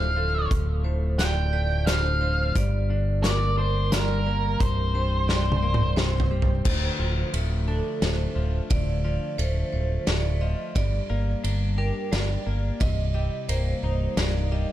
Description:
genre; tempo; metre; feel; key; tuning
post-rock; 88 BPM; 3/4; straight; unclear; A4 = 440 Hz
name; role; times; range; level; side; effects
octave-fuzz lead guitar; melody; 0.0-5.9 s; Bb4 to G5; -29 LUFS; right 1 dB; distortion, digital delay
twelve-string electric guitar; arpeggios; 0.0-14.7 s; C2 to G4; -32 LUFS; left 4 dB; lush chorus, digital delay
vibraphone with hard mallets; arpeggios; 0.0-14.7 s; A4 to Eb5; -33 LUFS; right 5 dB; digital delay
fingered electric bass; bass; 0.0-14.6 s; C1 to G1; -25 LUFS; equal; none
loose indie drum kit; drums; 0.5-14.3 s; crash cymbal, hi-hat, kick drum, ride cymbal, snare drum, toms; -28 LUFS; equal; none
room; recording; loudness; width
small room ambience; dark, warm production; -22 LUFS; side -13 dB against mid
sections
0.0-6.7 A section; 6.7-14.7 B section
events
drum fill 5.3-6.7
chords
0.0 Dm7; 2.6 Gm; 4.6 C5; 6.7 Dm7; 10.8 Gm; 12.8 Cm7

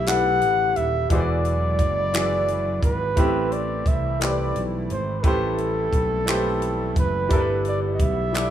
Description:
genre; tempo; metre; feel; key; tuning
slow six-eight R&B; 58 BPM (dotted quarters); 6/8; straight; A dorian; A4 = 440 Hz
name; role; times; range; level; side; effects
warm flugelhorn; melody; 0.0-8.5 s; A4 to F#5; -24 LUFS; equal; slapback echo
clear baby grand piano; accompaniment; 0.0-8.5 s; E3 to D5; -26 LUFS; left 1 dB; none
hollow soft pad; sustained chords; 0.0-8.5 s; D3 to E4; -33 LUFS; right 2 dB; chorus
sustaining fretless electric bass; bass; 0.0-8.5 s; D#1 to C2; -26 LUFS; equal; none
compact cocktail drum kit; drums; 0.1-8.5 s; handclaps, hi-hat, kick drum; -22 LUFS; equal; none
room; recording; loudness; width
little or no reverb; rough home demo mix, small room ambience; -20 LUFS; side -10 dB against mid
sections
0.0-8.5 A section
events
none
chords
0.0 G69; 1.1 E9; 3.2 Am9; 7.3 G69

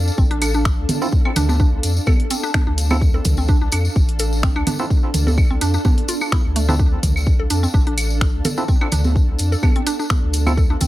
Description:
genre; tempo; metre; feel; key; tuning
minimal techno; 127 BPM; 4/4; swing 54% on 16ths; D minor; A4 = 439 Hz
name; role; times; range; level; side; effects
saturated sub bass; bass; 0.0-10.9 s; A1 to F2; -20 LUFS; equal; sidechain pumping
granular cloud pad; texture; 0.0-10.9 s; D4 to F5; -28 LUFS; right 1 dB; built-in reverb, sidechain pumping
tambourine; percussion; 0.1-10.9 s; none; -31 LUFS; left 3 dB; none
mallet-like synth pluck; riff; 0.2-10.9 s; A3 to A4; -26 LUFS; right 1 dB; chorus, cassette tape, sidechain pumping, digital delay
electronic kick drum; drums; 0.2-10.9 s; none; -16 LUFS; equal; none
punchy analog drum machine; drums; 0.3-10.9 s; finger snaps, hi-hat; -24 LUFS; equal; overdrive
electronic claves, toms and congas; percussion; 0.4-10.9 s; none; -25 LUFS; right 2 dB; tape echo
percussive organ stab; stabs; 1.0-10.5 s; C4 to A4; -27 LUFS; right 3 dB; chorus, tape echo
room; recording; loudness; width
little or no reverb; none; -15 LUFS; side -16 dB against mid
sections
0.0-10.9 A section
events
none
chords
0.0 Dm7

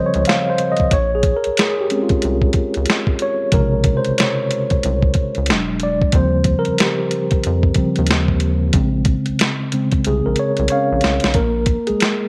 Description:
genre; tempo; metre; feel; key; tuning
R&B, neo-soul; 92 BPM; 4/4; swing 60% on 16ths; unclear; A4 = 440 Hz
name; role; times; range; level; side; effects
mellow tine electric piano; accompaniment; 0.0-12.3 s; C3 to F5; -20 LUFS; equal; none
dusty soul sampler-style drum kit; drums; 0.1-12.2 s; finger snaps, hi-hat, kick drum, snare drum; -20 LUFS; equal; none
rubbery square bass; bass; 0.2-11.9 s; E1 to F2; -23 LUFS; equal; none
room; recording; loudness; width
light reverb, digital ambience; none; -17 LUFS; mono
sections
0.0-11.4 A section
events
tine electric piano solo 0.0-11.4; drum fill 10.0-11.4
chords
0.0 Eb13; 0.9 Bbm7; 5.5 E9; 6.1 Eb13; 8.7 Bbm7; 11.4 Bb7(no3)

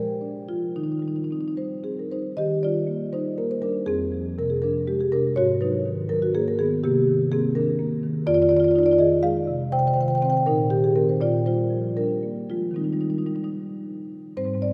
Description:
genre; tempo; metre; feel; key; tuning
classical, contemporary piece for solo marimba; 72-84 BPM (dotted quarters); 6/8; rubato; Eb major; A4 = 440 Hz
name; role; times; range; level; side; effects
marimba with soft mallets; solo; 0.0-14.7 s; F2 to G5; -24 LUFS; equal; none
room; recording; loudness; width
wet cathedral reverb, RT60 4.8 s; recorded in a church or concert hall; -23 LUFS; mono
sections
0.0-2.4 A section; 2.4-14.4 A section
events
none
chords
0.0 Bb7; 0.7 Eb6; 2.4 Ebadd9; 3.9 Fm; 5.4 Abm9; 6.8 Cm9; 8.3 Fm7; 9.7 Cm; 10.5 Bbsus24; 11.2 Bb13; 12.8 Eb6

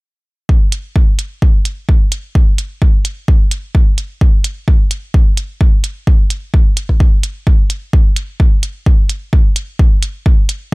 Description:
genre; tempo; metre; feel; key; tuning
minimal techno; 129 BPM; 4/4; straight; none; none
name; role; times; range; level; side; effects
electronic kick drum; drums; 0.5-10.4 s; none; -10 LUFS; equal; none
electronic hi-hat; drums; 0.7-10.6 s; none; -21 LUFS; right 3 dB; none
room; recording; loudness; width
little or no reverb; none; -11 LUFS; side -27 dB against mid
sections
0.5-10.7 A section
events
none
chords
none

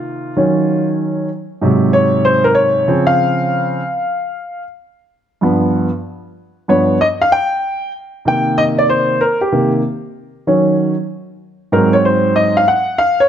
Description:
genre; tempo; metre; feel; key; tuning
hip hop; 95 BPM; 4/4; swing 65% on 16ths; C phrygian; A4 = 439 Hz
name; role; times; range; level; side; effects
warm baby grand piano; solo; 0.0-13.3 s; G2 to G5; -12 LUFS; equal; none
room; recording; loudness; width
moderate echo chamber reverb, RT60 1.4 s, studio ambience; dark, warm production; -13 LUFS; side -9 dB against mid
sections
0.0-7.9 A section; 7.9-13.3 A section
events
grand piano solo 0.0-7.9, 7.9-13.3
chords
0.4 Ebm7; 1.6 Ab7; 2.9 Dbmaj7; 5.4 G7#11; 7.9 Cm7; 10.5 Ebm7; 11.7 Ab7

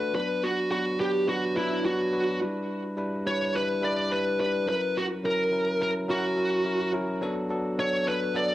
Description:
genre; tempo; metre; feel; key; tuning
pop; 106 BPM; 4/4; straight; unclear; A4 = 440 Hz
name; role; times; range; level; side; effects
high-gain lead guitar; melody; 0.0-8.5 s; E4 to D5; -27 LUFS; equal; distortion, cassette tape
bell-like tine electric piano; accompaniment; 0.0-8.5 s; F#3 to C#5; -29 LUFS; equal; none
room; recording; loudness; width
moderate spring reverb, RT60 1.4 s; home recording on cassette; -25 LUFS; side -14 dB against mid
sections
0.0-8.5 A section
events
none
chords
0.1 Bm; 2.4 Em7; 4.7 F#7; 7.2 D6

